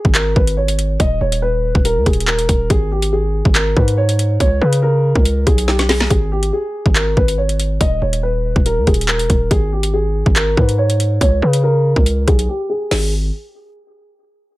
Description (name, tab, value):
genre	hip hop, drill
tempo	141 BPM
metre	4/4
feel	half-time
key	G# harmonic minor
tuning	A4 = 440 Hz
part	dark concert grand piano	melody	0.0-13.1 s	G4 to D#5	-19 LUFS	equal	low-pass filter, tape echo
part	distorted 808-style bass	bass	0.0-13.3 s	D#1 to C#3	-17 LUFS	equal	distortion
part	drill drum kit	drums	0.0-13.0 s	handclaps, hi-hat, kick drum, snare drum	-15 LUFS	equal	none
room	little or no reverb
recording	none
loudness	-13 LUFS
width	side -18 dB against mid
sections	0.0-6.1 A section; 6.1-12.9 B section; 12.9-14.6 C section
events	drum fill 5.7-6.1; filter sweep on grand piano 6.1-12.9; break 12.5-12.9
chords	0.0 G#sus4; 1.0 D#5; 2.7 G#sus4; 4.4 G#madd11; 6.1 G#sus4; 7.8 D#5; 9.5 G#sus4; 11.2 A#m7; 12.9 N.C.